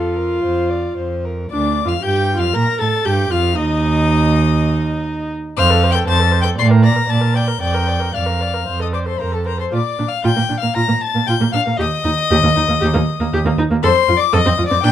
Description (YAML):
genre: quick classical-period movement for string quartet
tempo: 117 BPM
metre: 4/4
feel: rubato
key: Bb major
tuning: A4 = 440 Hz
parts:
  - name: rich violin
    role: melody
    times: 0.0-14.9 s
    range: F5 to C7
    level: -21 LUFS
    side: left 11 dB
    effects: none
  - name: dark violin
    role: second line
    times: 0.0-14.9 s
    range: A4 to C6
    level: -23 LUFS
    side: left 4 dB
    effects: none
  - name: warm viola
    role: accompaniment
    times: 0.0-14.9 s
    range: Bb3 to D5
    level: -21 LUFS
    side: right 1 dB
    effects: none
  - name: rich cello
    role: bass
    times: 0.0-14.9 s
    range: D2 to Bb2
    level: -17 LUFS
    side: right 2 dB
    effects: none
room: light reverb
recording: dark, warm production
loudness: -14 LUFS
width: side -10 dB against mid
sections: 0.0-1.5 A section; 1.5-14.9 B section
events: none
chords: 0.4 F5; 1.5 Bb/D; 3.6 N.C.; 5.6 F; 6.6 Bb; 7.6 Bb/F; 8.7 F; 9.7 Bb; 11.8 Eb5; 13.8 F5